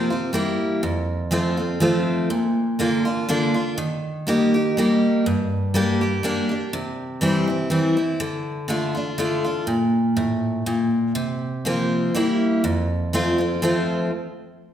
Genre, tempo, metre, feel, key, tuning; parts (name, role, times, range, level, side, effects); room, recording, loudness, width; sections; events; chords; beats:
bluegrass; 122 BPM; 3/4; swing 54% on 8ths; F major; A4 = 437 Hz
picked steel-string acoustic guitar; solo; 0.0-14.1 s; F2 to G4; -20 LUFS; equal
wet recital hall reverb, RT60 1.3 s; recorded in a church or concert hall; -20 LUFS; side -10 dB against mid
0.0-2.3 A section; 2.3-14.1 A section
0.3 Gm6; 0.8 F; 2.3 Bb; 3.8 Eb; 5.3 Gm; 6.7 C; 8.2 Dm; 9.7 N.C.; 11.2 C7sus4; 12.1 Gm6; 12.6 F; 14.1 N.C.
0.34 | 0.83 1.32 1.82 | 2.31 2.80 3.29 | 3.78 4.28 4.77 | 5.26 5.75 6.24 | 6.73 7.22 7.71 | 8.21 8.70 9.19 | 9.68 10.17 10.66 | 11.16 11.65 12.14 | 12.64 13.13 13.63